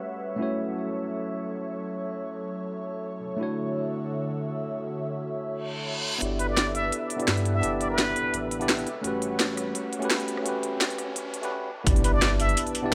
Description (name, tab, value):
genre	liquid drum and bass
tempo	170 BPM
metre	4/4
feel	swing 54% on 16ths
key	unclear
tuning	A4 = 440 Hz
part	tine electric piano	accompaniment	0.0-12.9 s	A3 to D5	-33 LUFS	equal	low-pass filter, delay
part	airy breathy pad	sustained chords	0.0-12.9 s	D3 to A5	-36 LUFS	equal	chorus, sidechain pumping
part	reverse cymbal, riser and impact	sound effects	5.6-12.9 s	none	-38 LUFS	equal	none
part	warm sub bass	bass	6.2-12.6 s	D1 to G2	-31 LUFS	equal	none
part	drum and bass drum kit	drums	6.2-12.8 s	hi-hat, rim click, snare drum	-29 LUFS	equal	none
part	trumpet with plunger mute	melody	6.4-8.4, 12.0-12.6 s	B4 to E5	-33 LUFS	equal	dub echo
part	dusty soul sampler-style drum kit	drums	11.9-12.8 s	hi-hat, snare drum	-35 LUFS	equal	high-pass filter on hats, high-pass filter on snare
part	electronic kick drum	drums	11.9 s	none	-25 LUFS	equal	none
room	light reverb, digital ambience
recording	high-pass filter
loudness	-28 LUFS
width	mono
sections	0.0-6.2 A section; 6.2-11.9 B section; 11.9-12.9 C section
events	reverse cymbal 5.6-6.2; build-up 6.2-11.9; filter sweep on tine electric piano 6.2-11.9; drop 11.9-12.9; impact 11.9-12.9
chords	0.4 F#m7; 3.4 Dmaj9; 6.2 G6; 8.9 A13; 11.7 N.C.; 11.9 G6